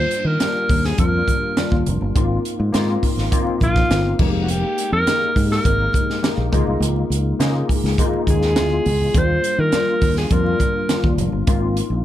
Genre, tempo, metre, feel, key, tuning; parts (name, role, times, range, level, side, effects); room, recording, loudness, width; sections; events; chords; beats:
polished 1980s jazz-funk pop; 103 BPM; 4/4; straight; A4 = 440 Hz
breathy alto saxophone; melody; 0.0-11.2 s; F4 to C5; -21 LUFS; equal; tape echo
tine electric piano; accompaniment; 0.0-12.0 s; G3 to Bb4; -23 LUFS; left 3 dB; ensemble chorus
fingered electric bass; bass; 0.0-12.0 s; F1 to Eb3; -20 LUFS; equal
crisp fusion drum kit; drums; 0.1-11.9 s; crash cymbal, hi-hat, kick drum, snare drum; -21 LUFS; equal
congas; percussion; 0.4-11.6 s; -32 LUFS; right 2 dB
light reverb; -16 LUFS; side -12 dB against mid
0.0-12.0 A section
0.0 Ebmaj9; 2.2 Ab69; 4.2 Fm11; 6.5 Db69; 8.6 Ddim7; 9.1 Ebmaj9; 11.5 Ab69
0.40 0.98 1.57 | 2.15 2.73 3.32 3.90 | 4.48 5.07 5.65 6.23 | 6.81 7.40 7.98 8.56 | 9.15 9.73 10.31 10.90 | 11.48